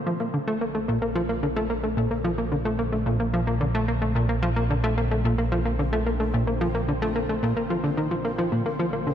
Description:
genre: ambient, sequencer-driven space music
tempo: 110 BPM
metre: 4/4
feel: straight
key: Bb major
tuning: A4 = 440 Hz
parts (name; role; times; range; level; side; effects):
- sweeping resonant pad; sustained chords; 0.0-9.1 s; D3 to C5; -37 LUFS; equal; none
- analog drone; bass; 0.8-9.1 s; Bb1; -28 LUFS; equal; chorus
- pulsing gated texture; texture; 0.9-9.1 s; D4 to G5; -47 LUFS; equal; none
- plucky analog bass; riff; 0.1-9.1 s; Bb2 to Bb3; -24 LUFS; equal; ping-pong delay
room: moderate lush hall reverb, RT60 2.8 s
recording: dark, warm production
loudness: -22 LUFS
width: side -9 dB against mid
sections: 0.0-9.1 A section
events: none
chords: 0.0 Bbadd9

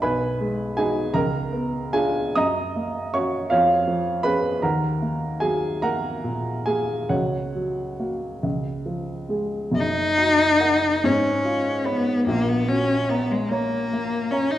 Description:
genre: classical, romantic duo for cello and grand piano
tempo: 45-55 BPM (dotted quarters)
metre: 6/8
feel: rubato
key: F# major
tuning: A4 = 440 Hz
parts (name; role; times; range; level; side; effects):
- warm baby grand piano; accompaniment; 0.0-14.6 s; F#1 to D#6; -22 LUFS; right 1 dB; none
- rich cello; melody; 9.8-14.6 s; G#3 to D#4; -20 LUFS; left 2 dB; none
room: wet recital hall reverb, RT60 1.4 s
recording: none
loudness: -20 LUFS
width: side -12 dB against mid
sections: 0.0-9.8 A section; 9.8-14.6 B section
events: none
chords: 0.0 G#m7/B; 1.1 C#7b9; 2.4 F#; 3.5 C#/E#; 4.6 D#m; 7.1 F#/C#; 8.4 C#; 9.8 F#; 11.1 C#7/G#; 12.3 F#/A#

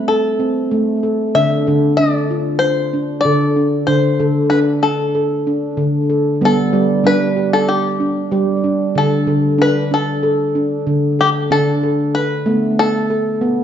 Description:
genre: world meditative, meditative tuned percussion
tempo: 94 BPM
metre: 4/4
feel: straight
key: unclear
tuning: A4 = 436 Hz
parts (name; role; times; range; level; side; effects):
- bluegrass banjo; melody; 0.0-13.6 s; G4 to E5; -19 LUFS; left 3 dB; none
- handpan; arpeggios; 0.0-13.6 s; D3 to A4; -15 LUFS; right 1 dB; diffuse ambient delay
room: wet echo chamber reverb, RT60 1.2 s, studio reverb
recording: dark, warm production, nothing above 7.7 kHz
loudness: -14 LUFS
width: side -9 dB against mid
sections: 0.0-11.5 A section; 11.5-13.6 B section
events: none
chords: 0.0 Am; 1.3 Dm; 6.4 G; 9.0 D5

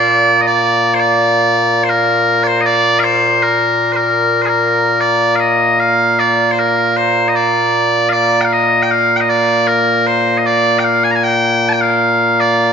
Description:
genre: scottish traditional, Scottish pipe music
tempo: 77 BPM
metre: 2/4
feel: straight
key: Bb major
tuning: A4 = 440 Hz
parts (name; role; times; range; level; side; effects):
- loud bright bagpipes; solo; 0.0-12.7 s; Bb2 to Bb5; -11 LUFS; equal; none
room: wet concert hall reverb, RT60 1.9 s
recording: nothing above 7.6 kHz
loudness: -11 LUFS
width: side -7 dB against mid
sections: 0.0-5.0 A section; 5.0-12.7 B section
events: none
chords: none

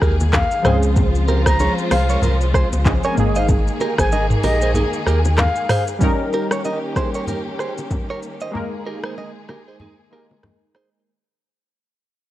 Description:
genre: afrobeats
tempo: 95 BPM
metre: 4/4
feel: swing 58% on 16ths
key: Ab major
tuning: A4 = 440 Hz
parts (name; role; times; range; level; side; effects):
- warm analog keys; accompaniment; 0.0-11.1 s; F3 to Bb4; -25 LUFS; equal; chorus, tremolo
- warm studio string section; sustained chords; 0.0-11.0 s; Eb3 to C5; -27 LUFS; left 1 dB; none
- direct-recorded clean electric guitar; riff; 0.0-10.9 s; Eb4 to Eb5; -25 LUFS; right 4 dB; tape echo
- sub bass with octave; bass; 0.0-5.5 s; Ab1 to Eb2; -18 LUFS; equal; none
- afro-pop drum kit; drums; 0.0-10.9 s; handclaps, hi-hat, kick drum, rim click, shaker, toms; -20 LUFS; equal; none
- bongos and congas; percussion; 0.2-10.6 s; none; -26 LUFS; left 2 dB; none
- reedy silver concert flute; melody; 0.3-5.9 s; Eb5 to Bb5; -24 LUFS; left 2 dB; none
room: little or no reverb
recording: worn, warbling old tape, cassette tape, warbly pitch drift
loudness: -16 LUFS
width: side -14 dB against mid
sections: 0.0-6.0 A section; 6.0-11.1 B section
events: kick muted 4.8-6.0; fade-out 6.0-11.1; break 8.5-11.1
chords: 0.0 Absus2; 0.6 Dbmaj7; 3.2 Absus2; 6.0 Eb7; 8.5 Absus2

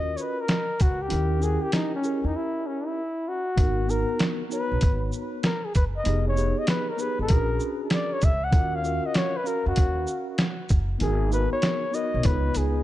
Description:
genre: hip hop, jazz-hop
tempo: 97 BPM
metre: 4/4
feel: swing 66% on 16ths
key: unclear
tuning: A4 = 437 Hz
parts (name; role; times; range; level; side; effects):
- breathy flugelhorn; melody; 0.0-12.8 s; C#4 to F#5; -28 LUFS; left 2 dB; analog delay
- mellow tine electric piano; accompaniment; 0.0-12.8 s; A#3 to E#5; -31 LUFS; right 1 dB; medium stereo tremolo
- upright bass; bass; 0.0-12.8 s; F1 to E#2; -26 LUFS; equal; none
- trip hop sampler-style drum kit; drums; 0.2-12.7 s; hi-hat, kick drum, shaker, snare drum; -24 LUFS; equal; none
room: light reverb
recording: dark, warm production, nothing above 10.7 kHz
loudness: -22 LUFS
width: side -14 dB against mid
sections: 0.0-12.8 A section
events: flugelhorn solo 0.0-12.8; break 2.3-3.6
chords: 0.0 D#m7; 1.1 D#7b9; 3.6 G#m9; 6.1 Fm7b5; 7.3 A#7alt; 8.5 D#m9; 11.0 G#m7; 12.2 C#9

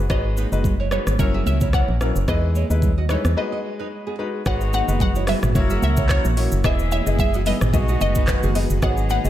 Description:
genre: afrobeats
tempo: 110 BPM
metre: 4/4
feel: swing 55% on 16ths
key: G# minor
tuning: A4 = 438 Hz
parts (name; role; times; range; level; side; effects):
- clear concert grand piano; accompaniment; 0.0-9.3 s; F#3 to D#5; -28 LUFS; left 4 dB; none
- organ-like FM bass; bass; 0.0-9.3 s; E1 to E2; -21 LUFS; equal; none
- glassy wavetable pluck; melody; 0.1-9.3 s; B4 to F#5; -28 LUFS; equal; chorus, diffuse ambient delay
- nylon-string guitar; riff; 0.1-9.2 s; B3 to E5; -32 LUFS; right 6 dB; diffuse ambient delay
- afro-pop drum kit; drums; 0.1-9.3 s; handclaps, hi-hat, kick drum, rim click, shaker, toms; -23 LUFS; equal; none
- congas; percussion; 0.4-9.3 s; none; -30 LUFS; right 5 dB; none
- warm horn section; second line; 4.5-9.3 s; G#3 to A#4; -31 LUFS; left 1 dB; none
- airy breathy pad; sustained chords; 4.5-9.3 s; D#3 to D#5; -30 LUFS; right 1 dB; chorus
room: light reverb, small room ambience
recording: none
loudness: -18 LUFS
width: side -12 dB against mid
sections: 0.0-4.5 A section; 4.5-9.3 B section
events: break 3.4-4.5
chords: 0.1 G#m7; 1.2 F#7; 2.3 Emaj7; 3.4 B6; 4.5 G#m7; 5.6 F#7; 6.6 Emaj7; 7.7 B6

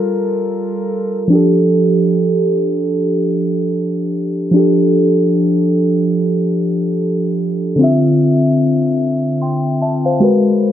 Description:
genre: R&B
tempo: 74 BPM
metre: 4/4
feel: swing 58% on 16ths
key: unclear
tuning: A4 = 440 Hz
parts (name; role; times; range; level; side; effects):
- muted felt-like synth keys; solo; 0.0-10.7 s; D3 to C6; -13 LUFS; equal; chorus
room: light reverb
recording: low-pass filter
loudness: -13 LUFS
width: side -10 dB against mid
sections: 0.0-1.3 A section; 1.3-10.7 B section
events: filter sweep 1.3-10.7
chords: 0.0 Gm9; 1.3 F69; 7.8 Dm9

